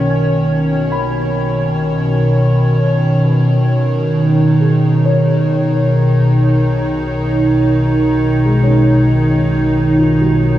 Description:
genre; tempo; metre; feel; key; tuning
ambient; 67 BPM; 4/4; straight; B major; A4 = 441 Hz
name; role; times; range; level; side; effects
evolving wavetable pad; sustained chords; 0.0-10.6 s; B2 to C#5; -12 LUFS; equal; chorus, built-in reverb
felt-muted upright piano; arpeggios; 0.0-10.6 s; F#3 to B5; -24 LUFS; left 2 dB; diffuse ambient delay
round analog bass; bass; 0.0-10.6 s; B1; -28 LUFS; equal; none
room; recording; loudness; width
wet cathedral reverb, RT60 6.4 s; studio ambience; -11 LUFS; side -13 dB against mid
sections
0.0-10.6 A section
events
fade-in on felt piano 0.0-10.6; fade-in on analog synth bass 0.0-10.6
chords
0.0 Bmaj9

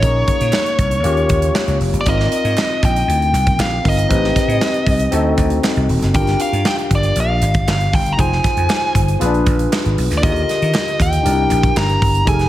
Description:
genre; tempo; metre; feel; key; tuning
polished 1980s jazz-funk pop; 118 BPM; 4/4; straight; Eb major; A4 = 441 Hz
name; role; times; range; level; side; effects
nasal lead guitar with a parked wah; melody; 0.0-12.5 s; Db5 to Bb5; -19 LUFS; equal; overdrive
barky tine electric piano; accompaniment; 0.0-12.5 s; D3 to C5; -21 LUFS; left 2 dB; overdrive, wide subtle chorus
vintage slap bass; bass; 0.0-12.5 s; Eb1 to Eb3; -18 LUFS; equal; none
modern studio drum kit; drums; 0.0-12.5 s; hi-hat, kick drum, snare drum; -20 LUFS; equal; none
group handclap; percussion; 0.5-11.9 s; none; -34 LUFS; right 6 dB; none
room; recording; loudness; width
moderate plate reverb, RT60 1.8 s, small room ambience; dreamy mix soaked in reverb; -14 LUFS; side -14 dB against mid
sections
0.0-12.5 A section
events
none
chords
0.0 Bbm11; 1.0 Eb9; 2.1 Ab69; 4.1 Am7b5; 5.1 D7b9; 6.1 Gm7; 8.2 Fm9; 9.2 Bb7b9; 10.2 Ebmaj9; 11.3 C7

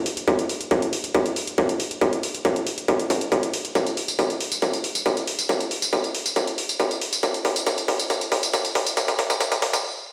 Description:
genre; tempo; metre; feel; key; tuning
driving peak-time techno; 138 BPM; 4/4; straight; none; none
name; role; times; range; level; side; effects
electronic hi-hat and tambourine; drums; 0.1-9.8 s; none; -29 LUFS; equal; sidechain pumping on hats, sidechain pumping on perc
electronic kick drum; drums; 0.3-9.8 s; none; -25 LUFS; equal; distortion, high-pass filter on kick, high-pass filter on room
room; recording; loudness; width
light reverb; played on a big sound system in a bare room, stone room reverb, high-pass filter; -24 LUFS; mono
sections
0.0-10.1 A section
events
build-up 0.0-10.1; filter sweep 0.0-10.1; drum fill 3.8-9.8; stop 9.8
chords
none

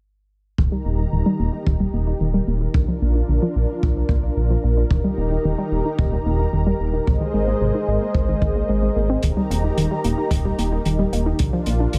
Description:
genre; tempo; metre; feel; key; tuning
synthwave; 111 BPM; 4/4; straight; Eb major; A4 = 439 Hz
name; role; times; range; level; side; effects
lush unison pad; sustained chords; 0.6-12.0 s; Eb3 to Bb5; -27 LUFS; equal; chorus, vintage 12-bit sampler grit, sidechain pumping
unison pluck; arpeggios; 0.6-12.0 s; C3 to Eb4; -27 LUFS; equal; vintage 12-bit sampler grit, digital delay
dark detuned saw bass; bass; 0.6-12.0 s; Eb1 to Bb1; -24 LUFS; equal; none
kick drum; drums; 0.6-11.5 s; none; -24 LUFS; equal; none
hi-hat; drums; 9.2-12.0 s; none; -35 LUFS; equal; none
room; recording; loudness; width
light reverb, small room reverb; none; -21 LUFS; mono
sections
0.6-12.0 A section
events
filter sweep on detuned saw bass 0.6-12.0; filter sweep on analog synth pad 0.6-12.0; filter sweep on synth arpeggio sound 0.6-12.0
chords
0.6 Eb; 2.7 Bb; 4.9 Eb; 7.1 Abadd9; 9.2 Eb; 11.4 Bb

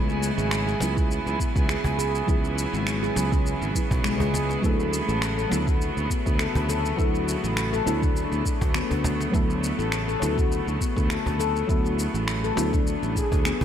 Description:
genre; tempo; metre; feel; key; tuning
organic downtempo; 102 BPM; 4/4; swing 54% on 16ths; B dorian; A4 = 440 Hz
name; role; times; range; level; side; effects
deep mellow chord stab; accompaniment; 0.0-13.6 s; F#3 to A4; -32 LUFS; left 1 dB; chorus, sidechain pumping, ping-pong delay
rich chamber string section; sustained chords; 0.0-13.6 s; C#3 to G#5; -30 LUFS; right 2 dB; sidechain pumping
handpan; arpeggios; 0.0-13.6 s; G#3 to B4; -29 LUFS; left 3 dB; ping-pong delay
sustaining fretless electric bass; bass; 0.0-13.6 s; G#1 to D2; -28 LUFS; equal; sidechain pumping
electronic shaker and finger snaps; drums; 0.1-13.6 s; none; -32 LUFS; equal; none
cajon; percussion; 0.8-13.6 s; none; -31 LUFS; equal; none
electronic kick drum; drums; 1.0-13.4 s; none; -24 LUFS; right 1 dB; none
breathy flute-like synth lead; melody; 13.2-13.6 s; G#4; -29 LUFS; right 3 dB; ensemble chorus
room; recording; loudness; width
light reverb, studio ambience; none; -22 LUFS; side -9 dB against mid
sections
0.0-13.6 A section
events
filter sweep on synth stab 0.0-13.6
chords
0.0 C#m7; 4.6 Bm7

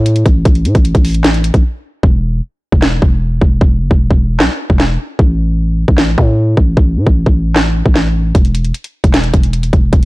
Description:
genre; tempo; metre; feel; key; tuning
hip hop, trap; 152 BPM; 4/4; half-time; unclear; A4 = 440 Hz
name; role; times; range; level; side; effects
growling 808-style bass; bass; 0.0-10.1 s; E1 to A2; -13 LUFS; equal; none
trap drum kit; drums; 0.1-10.1 s; handclaps, hi-hat, kick drum, snare drum; -11 LUFS; equal; vintage 12-bit sampler grit
room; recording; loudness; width
digital ambience; blown-out, overdriven recording, overdrive; -10 LUFS; side -21 dB against mid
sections
0.0-2.0 A section; 2.0-10.1 B section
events
break 1.6-2.0; hi-hats muted 2.0-8.3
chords
none

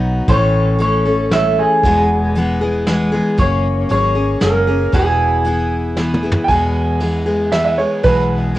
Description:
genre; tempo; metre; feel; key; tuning
honky-tonk and classic country; 116 BPM; 3/4; straight; E major; A4 = 440 Hz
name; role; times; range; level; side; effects
picked steel-string acoustic guitar; accompaniment; 0.0-8.6 s; E2 to A4; -18 LUFS; left 1 dB; cassette tape
vintage muted fingered electric bass; bass; 0.0-8.6 s; E1 to E2; -20 LUFS; equal; none
electric guitar through a small old amp; melody; 0.3-5.9 s; G#4 to E5; -17 LUFS; right 1 dB; cassette tape
vintage brush drum kit; drums; 0.3-8.6 s; hi-hat, kick drum, ride cymbal, snare drum, toms; -21 LUFS; equal; cassette tape
clear upright piano; second line; 6.4-8.3 s; B4 to G#5; -17 LUFS; right 3 dB; cassette tape
room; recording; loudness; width
light reverb; home recording on cassette; -13 LUFS; side -15 dB against mid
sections
0.0-6.5 A section; 6.5-8.6 B section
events
drum fill 6.0-6.5; upright piano solo 6.5-8.6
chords
0.3 A; 1.8 E; 3.4 F#add9; 4.9 E

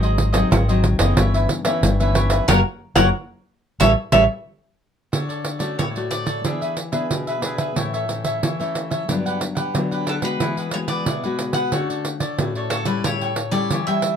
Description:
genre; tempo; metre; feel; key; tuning
samba and choro; 91 BPM; 4/4; straight; D major from 5.1 s; A4 = 442 Hz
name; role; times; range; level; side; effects
cavaquinho; accompaniment; 0.0-14.2 s; D4 to G5; -26 LUFS; equal; none
nylon-string guitar; accompaniment; 0.0-14.2 s; G2 to G#4; -25 LUFS; left 4 dB; none
vintage muted fingered electric bass; bass; 0.0-4.3 s; F#1 to A1; -19 LUFS; equal; none
pandeiro; percussion; 0.0-14.2 s; none; -23 LUFS; right 4 dB; none
cavaquinho; melody; 2.5-14.2 s; A4 to F#5; -22 LUFS; right 2 dB; none
room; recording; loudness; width
light reverb; close, detailed microphones; -18 LUFS; side -8 dB against mid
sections
0.0-5.1 A section; 5.1-14.2 B section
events
cavaquinho solo 0.0-5.1; band accent 2.5-5.1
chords
0.0 G#7; 1.2 C#m7b5/G; 2.5 F#; 3.8 A7; 5.1 Dmaj7; 6.4 E7; 7.8 A; 9.1 Gmaj7; 10.4 Eadd9; 11.7 Dmaj7; 13.0 A7

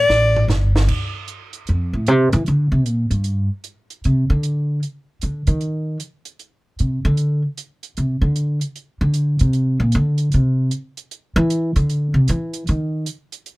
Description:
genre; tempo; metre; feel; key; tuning
jazz, small-group swing and bop; 153 BPM; 4/4; swing 65% on 8ths; unclear; A4 = 441 Hz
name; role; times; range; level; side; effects
warm alto saxophone; melody; 0.0-0.5 s; D5; -16 LUFS; left 2 dB; plate reverb
upright bass; bass; 0.0-13.0 s; G1 to E3; -17 LUFS; equal; none
compact cocktail drum kit; drums; 0.1-13.6 s; crash cymbal, hi-hat, kick drum, snare drum, toms; -28 LUFS; right 1 dB; none
room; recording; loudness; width
little or no reverb; none; -17 LUFS; side -21 dB against mid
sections
0.9-13.5 A section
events
drum fill 0.1-0.9; upright bass solo 0.9-13.6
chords
0.1 Gsus2; 0.9 Fmaj7; 2.5 Gmadd11; 3.2 N.C.; 4.0 Cmadd9; 7.2 Csus2; 10.3 Cadd9; 12.7 N.C.

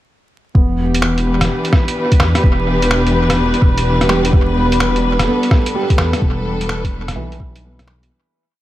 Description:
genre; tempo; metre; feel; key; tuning
future garage; 127 BPM; 4/4; swing 65% on 16ths; E minor; A4 = 439 Hz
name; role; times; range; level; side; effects
felt-muted upright piano; accompaniment; 0.5-8.2 s; E3 to B3; -22 LUFS; right 2 dB; sidechain pumping, dub echo
warm studio string section; sustained chords; 0.6-8.1 s; E3 to B4; -19 LUFS; left 1 dB; sidechain pumping
swelling detuned saw bass; bass; 0.6-8.1 s; E1 to E2; -18 LUFS; equal; sidechain pumping
electronic kick drum; drums; 0.6-7.5 s; none; -13 LUFS; equal; overdrive, studio reverb
drifting glass-harmonics texture; texture; 1.1-8.1 s; B4; -25 LUFS; right 2 dB; chorus, built-in reverb
lo-fi sampler-style drum kit; drums; 0.9-8.1 s; finger snaps, hi-hat, rim click; -20 LUFS; equal; overdrive, studio reverb, dub echo
room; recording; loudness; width
moderate spring reverb, RT60 1.4 s; echo-heavy mix, vinyl crackle; -12 LUFS; side -14 dB against mid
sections
0.6-8.1 groove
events
fade-out 5.6-8.1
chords
0.6 Em7; 4.3 Gadd9/E

